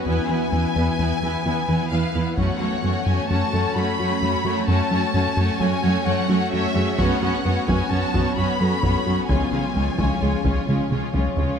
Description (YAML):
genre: cinematic, hybrid orchestral and electronic film score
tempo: 130 BPM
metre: 5/4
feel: straight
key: F# minor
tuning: A4 = 440 Hz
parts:
  - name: warm symphonic violin section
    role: melody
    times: 0.0-11.1 s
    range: E5 to B5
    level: -28 LUFS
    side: left 4 dB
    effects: none
  - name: warm symphonic violin section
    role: second line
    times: 0.0-11.6 s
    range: E#4 to C#5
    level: -29 LUFS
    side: left 2 dB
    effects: none
  - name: rich studio viola section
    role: accompaniment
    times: 0.0-11.6 s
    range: G#3 to E4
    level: -28 LUFS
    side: right 1 dB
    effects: none
  - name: glassy FM pad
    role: sustained chords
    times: 0.0-11.6 s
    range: E3 to C#5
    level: -28 LUFS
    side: equal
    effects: ensemble chorus, built-in reverb
  - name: felt-muted upright piano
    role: texture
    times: 0.0-11.6 s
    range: G#4 to A4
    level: -37 LUFS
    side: left 4 dB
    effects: none
  - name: chorused synth bass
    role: riff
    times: 0.1-11.5 s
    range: C#2 to F#3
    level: -25 LUFS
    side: left 1 dB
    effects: none
  - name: rich symphonic cello section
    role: bass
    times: 0.1-11.5 s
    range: C#2 to F#2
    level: -26 LUFS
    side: right 3 dB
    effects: none
  - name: solo taiko drums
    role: drums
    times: 2.4-3.3, 7.0-11.6 s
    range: none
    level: -27 LUFS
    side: equal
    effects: none
  - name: mellow French horn section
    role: sustained chords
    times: 11.1-11.6 s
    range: C#4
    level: -30 LUFS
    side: left 3 dB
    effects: none
room: wet scoring stage reverb, RT60 1.8 s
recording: none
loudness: -19 LUFS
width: side -7 dB against mid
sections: 0.0-11.6 A section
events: drum fill 10.9-11.6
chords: 0.1 E; 2.4 F#m; 7.0 Bsus2/F#; 9.3 C#